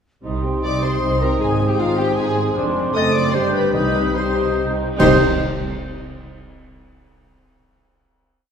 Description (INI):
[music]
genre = classical, dramatic, fast romantic movement for symphony orchestra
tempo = 142-157 BPM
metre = 3/4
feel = straight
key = C minor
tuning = A4 = 440 Hz
[part]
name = dark cor anglais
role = second line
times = 0.2-5.2 s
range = C5 to Eb5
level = -29 LUFS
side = right 2 dB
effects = none
[part]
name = rich symphonic viola section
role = accompaniment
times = 0.2-5.2 s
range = G3 to A4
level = -23 LUFS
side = equal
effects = none
[part]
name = dark French horn section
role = sustained chords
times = 0.2-5.2 s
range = G3 to Eb4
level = -23 LUFS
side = left 3 dB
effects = none
[part]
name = warm symphonic cello section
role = bass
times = 0.2-5.2 s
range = F2 to C3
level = -26 LUFS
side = right 3 dB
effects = none
[part]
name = warm symphonic double bass section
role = bass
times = 0.2-5.2 s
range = F1 to C2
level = -26 LUFS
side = right 3 dB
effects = none
[part]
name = mellow hollow concert flute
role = second line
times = 0.3-5.2 s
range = D6 to A6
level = -28 LUFS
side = right 1 dB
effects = none
[part]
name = warm symphonic violin section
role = melody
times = 0.6-5.2 s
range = F5 to D#6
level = -28 LUFS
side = left 3 dB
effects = none
[part]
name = dark clarinet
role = second line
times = 0.6-5.2 s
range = F4 to D#5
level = -26 LUFS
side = equal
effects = none
[part]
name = warm symphonic violin section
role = second line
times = 0.6-5.2 s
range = F4 to D#5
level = -26 LUFS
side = left 3 dB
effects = none
[part]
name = cymbal swell, clash cymbals and concert bass drum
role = percussion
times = 2.6-5.8 s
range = none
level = -28 LUFS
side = right 1 dB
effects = none
[part]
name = timpani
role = percussion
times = 3.7-5.2 s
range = C3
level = -28 LUFS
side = equal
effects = none
[sound]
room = wet scoring stage reverb, RT60 2.1 s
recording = heard from further back in the room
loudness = -16 LUFS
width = side -7 dB against mid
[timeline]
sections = 0.2-5.0 A section; 5.0-6.2 final chord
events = slowing down 2.0-5.0; band accent 5.0-5.4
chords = 0.2 Cm; 1.4 Ab; 2.6 Dm7/F; 3.0 F#dim7; 3.3 G; 3.7 Cm